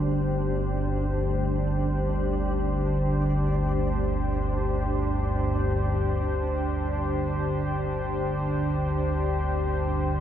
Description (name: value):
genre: dark ambient drone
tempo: free time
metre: none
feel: none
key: unclear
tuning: A4 = 438 Hz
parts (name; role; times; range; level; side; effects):
- dark analog pad; sustained chords; 0.0-10.2 s; D4 to C5; -29 LUFS; left 1 dB; chorus
- analog drone; drone; 0.0-10.2 s; G1 to D2; -26 LUFS; equal; chorus
- flickering grainy texture; texture; 0.0-10.2 s; D4 to F5; -42 LUFS; right 1 dB; none
room: wet cathedral reverb, RT60 6.0 s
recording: dark, warm production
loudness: -24 LUFS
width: side -10 dB against mid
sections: 0.0-10.2 A section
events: none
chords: 0.0 G5